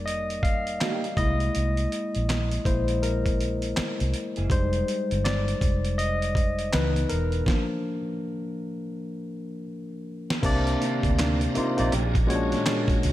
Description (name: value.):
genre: R&B, neo-soul.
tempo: 81 BPM.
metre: 4/4.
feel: swing 61% on 16ths.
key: C minor.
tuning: A4 = 437 Hz.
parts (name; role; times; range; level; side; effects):
barky tine electric piano; accompaniment; 0.0-13.1 s; Bb2 to F5; -27 LUFS; left 1 dB; overdrive, slapback echo.
vintage muted fingered electric bass; bass; 0.0-13.1 s; Fb1 to D2; -27 LUFS; equal; none.
dusty soul sampler-style drum kit; drums; 0.1-13.1 s; crash cymbal, handclaps, hi-hat, kick drum, snare drum; -28 LUFS; equal; none.
mellow electric guitar; second line; 0.8-12.9 s; Eb3 to G#4; -35 LUFS; right 4 dB; analog chorus, slapback echo.
bright tonewheel organ; sustained chords; 10.4-13.1 s; D4 to Bb5; -37 LUFS; right 2 dB; overdrive, chorus vibrato, fast rotary speaker.
room: light reverb.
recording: none.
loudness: -23 LUFS.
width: side -14 dB against mid.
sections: 0.0-10.4 A section; 10.4-13.1 B section.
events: tine electric piano solo 0.0-10.4; stop 7.5-10.4; drum fill 9.0-10.4.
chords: 0.0 F9sus4; 1.2 C7alt; 4.5 Fm7; 6.7 Dbm9; 7.5 Fsus4; 10.4 Cm9; 11.9 Bb7alt.